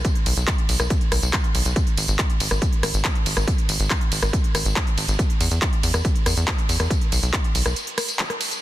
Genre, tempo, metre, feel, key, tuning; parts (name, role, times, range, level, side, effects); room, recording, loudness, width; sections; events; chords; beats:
uplifting trance; 140 BPM; 4/4; straight; A4 = 443 Hz
tight sequencer bass; bass; 0.0-7.7 s; G#1 to E2; -22 LUFS; equal; sidechain pumping
electronic kick drum; drums; 0.0-7.4 s; -22 LUFS; equal
techno drum kit; drums; 0.0-8.6 s; handclaps, hi-hat, ride cymbal, rim click, tambourine; -24 LUFS; equal; soft clipping on snare, sidechain pumping on hats, sidechain pumping on cymbals, sidechain pumping on perc
little or no reverb; dense, heavily limited modern master; -19 LUFS; side -14 dB against mid
0.0-8.6 A section
drop 0.0-8.6; break 7.8-8.6
| 0.05 0.48 0.90 1.33 | 1.76 2.19 2.62 3.05 | 3.48 3.90 4.33 4.76 | 5.19 5.62 6.05 6.48 | 6.90 7.33 7.76 8.19